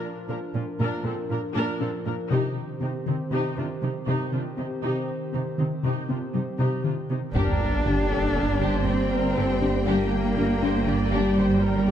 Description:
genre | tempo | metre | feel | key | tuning
cinematic, hybrid orchestral and electronic film score | 119 BPM | 5/4 | straight | G minor | A4 = 438 Hz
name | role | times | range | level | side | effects
rich symphonic viola section | accompaniment | 0.0-11.9 s | Bb3 to D5 | -32 LUFS | right 1 dB | none
hollow soft pad | sustained chords | 0.0-11.9 s | Eb3 to D5 | -32 LUFS | right 1 dB | chorus
resonant blip pluck | arpeggios | 0.3-11.9 s | C3 to Bb4 | -31 LUFS | left 4 dB | phaser, tape echo
rich studio cello section | bass | 0.3-11.9 s | Bb2 to D4 | -27 LUFS | right 1 dB | none
rich symphonic violin section | second line | 7.3-11.9 s | D4 to Bb4 | -33 LUFS | left 4 dB | none
mellow French horn section | sustained chords | 7.3-11.9 s | Bb3 to G4 | -34 LUFS | left 7 dB | none
clear symphonic double bass section | bass | 7.3-11.9 s | G1 | -31 LUFS | right 2 dB | none
phased detuned saw bass | bass | 7.3-11.9 s | G1 | -29 LUFS | left 1 dB | phaser
sub drop | sound effects | 7.3-9.9 s | none | -29 LUFS | equal | none
rich symphonic violin section | melody | 7.4-11.9 s | G5 | -38 LUFS | left 3 dB | none
warm trombone section | sustained chords | 7.4-11.9 s | G2 to G3 | -35 LUFS | right 6 dB | none
taiko ensemble | drums | 7.4-8.3 s | none | -30 LUFS | equal | none
room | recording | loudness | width
moderate scoring stage reverb, RT60 1.6 s | dark, warm production | -23 LUFS | side -10 dB against mid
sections
0.0-7.4 A section; 7.4-11.9 B section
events
build-up 0.0-7.4; impact 7.4-9.9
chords
0.0 Bb; 2.3 Cm; 7.4 Gm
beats
0.29 0.80 1.30 1.80 | 2.31 2.81 3.32 3.82 4.33 | 4.83 5.33 5.84 6.34 6.85 | 7.35 7.86 8.36 8.86 9.37 | 9.87 10.38 10.88 11.38 11.89

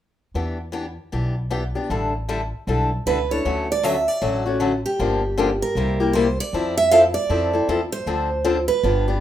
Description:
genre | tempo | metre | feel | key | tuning
acoustic string swing (jazz manouche) | 156 BPM | 4/4 | swing 63% on 8ths | unclear | A4 = 440 Hz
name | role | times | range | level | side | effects
upright bass | bass | 0.3-9.2 s | G1 to F2 | -26 LUFS | equal | none
picked old ladder-braced acoustic guitar | accompaniment | 0.4-9.2 s | C3 to A4 | -23 LUFS | left 4 dB | plate reverb
picked steel-string acoustic guitar | melody | 3.1-9.2 s | G4 to F5 | -20 LUFS | right 3 dB | plate reverb
room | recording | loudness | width
wet studio reverb, RT60 0.5 s | rough home demo mix | -19 LUFS | side -11 dB against mid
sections
0.3-3.4 A section; 3.4-9.2 B section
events
none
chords
0.3 Em7; 1.9 A9sus4; 3.4 Dmaj7; 5.0 Gm7; 5.8 C7; 6.5 Fmaj7; 8.1 Dm7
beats
| 0.35 0.74 1.12 1.51 | 1.90 2.28 2.67 3.06 | 3.44 3.83 4.21 4.60 | 4.98 5.37 5.75 6.14 | 6.53 6.91 7.30 7.68 | 8.07 8.45 8.84

